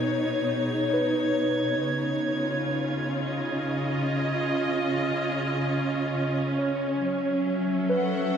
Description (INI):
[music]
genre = ambient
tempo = 69 BPM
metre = 3/4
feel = straight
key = unclear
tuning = A4 = 441 Hz
[part]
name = warm symphonic string section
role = sustained chords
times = 0.0-8.4 s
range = B2 to F#5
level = -25 LUFS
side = equal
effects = none
[part]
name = muted felt-like synth keys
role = arpeggios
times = 0.0-1.8, 6.6-8.4 s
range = G#4 to C#5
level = -31 LUFS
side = right 2 dB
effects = chorus, tape echo
[part]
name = drifting glass-harmonics texture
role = texture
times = 0.0-8.4 s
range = E5 to G#6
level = -36 LUFS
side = right 2 dB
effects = chorus, built-in reverb
[sound]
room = wet lush hall reverb, RT60 2.8 s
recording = dark, warm production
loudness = -24 LUFS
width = side -7 dB against mid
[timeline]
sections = 0.0-8.4 A section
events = none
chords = 0.0 Badd9; 1.8 C#add9; 7.0 F#m7